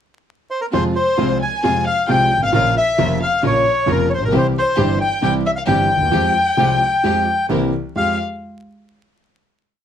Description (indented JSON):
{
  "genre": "tango",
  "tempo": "133 BPM",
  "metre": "4/4",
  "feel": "rubato",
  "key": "F harmonic minor",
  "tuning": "A4 = 440 Hz",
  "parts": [
    { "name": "bandoneon", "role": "melody", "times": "0.5-8.2 s", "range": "Bb4 to Ab5", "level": "-18 LUFS", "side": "left 1 dB", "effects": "none" },
    { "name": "warm violin", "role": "second line", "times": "0.7-8.2 s", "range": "Bb4 to Ab5", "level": "-22 LUFS", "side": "left 5 dB", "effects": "none" },
    { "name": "warm concert grand piano", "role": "accompaniment", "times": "0.7-8.2 s", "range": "F1 to G4", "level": "-19 LUFS", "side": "right 1 dB", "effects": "none" },
    { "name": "rich chamber string section", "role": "stabs", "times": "0.7-8.2 s", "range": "Ab3 to Bb4", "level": "-26 LUFS", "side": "left 1 dB", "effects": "none" }
  ],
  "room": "moderate club reverb, RT60 0.5 s",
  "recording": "close, detailed microphones, vinyl crackle",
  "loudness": "-15 LUFS",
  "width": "side -9 dB against mid",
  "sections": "0.0-0.7 pickup bar; 0.7-8.0 A section; 8.0-9.8 final chord",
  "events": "none",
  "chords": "0.0 N.C.; 0.7 Fm; 2.5 Bbm; 4.3 C; 6.1 Fmadd9; 7.5 C7; 8.0 Fmadd9",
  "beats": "0.27 | 0.72 1.18 1.63 2.09 | 2.54 2.99 3.44 3.88 | 4.33 4.78 5.23 5.67 | 6.13 6.58 7.04 7.50 | 7.96"
}